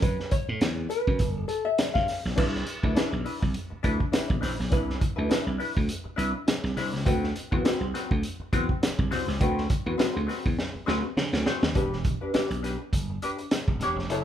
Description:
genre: funk.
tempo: 102 BPM.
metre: 4/4.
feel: swing 56% on 16ths.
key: unclear.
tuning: A4 = 435 Hz.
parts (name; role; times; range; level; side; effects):
hollow-body jazz guitar; accompaniment; 0.0-14.2 s; C4 to F5; -30 LUFS; left 2 dB; wah.
slap bass; bass; 0.0-14.2 s; E1 to D3; -30 LUFS; right 1 dB; none.
crunchy breakbeat drum kit; drums; 0.0-14.2 s; crash cymbal, hi-hat, kick drum, snare drum; -27 LUFS; equal; none.
room: light reverb.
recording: band playing live in one room.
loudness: -24 LUFS.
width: side -10 dB against mid.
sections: 0.0-2.4 A section; 2.4-11.7 B section; 11.7-14.2 C section.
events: hollow-body jazz guitar solo 0.0-2.4; drum fill 10.6-11.7.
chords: 0.0 F#7(no3); 1.2 G; 2.4 Cmaj9; 7.1 D13; 11.7 Em7.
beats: | 0.03 0.62 1.20 1.79 | 2.38 2.96 3.55 4.13 | 4.72 5.31 5.89 6.48 | 7.06 7.65 8.23 8.82 | 9.40 9.99 10.58 11.16 | 11.75 12.33 12.92 13.51 | 14.10.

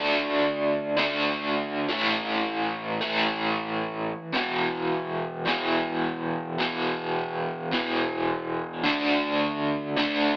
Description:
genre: rock.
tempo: 107 BPM.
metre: 4/4.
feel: swing 64% on 8ths.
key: unclear.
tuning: A4 = 440 Hz.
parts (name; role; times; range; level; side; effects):
overdriven semi-hollow guitar; solo; 0.0-10.4 s; E2 to D4; -23 LUFS; equal; tremolo.
room: moderate club reverb, RT60 0.6 s.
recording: AM radio sound.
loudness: -24 LUFS.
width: side -24 dB against mid.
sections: 0.0-10.4 A section.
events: none.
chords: 0.0 D5; 1.8 A5; 4.3 E5; 8.8 D5.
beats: 0.42 0.98 1.54 | 2.10 2.66 3.22 3.79 | 4.35 4.91 5.47 6.03 | 6.59 7.16 7.72 8.28 | 8.84 9.41 9.97.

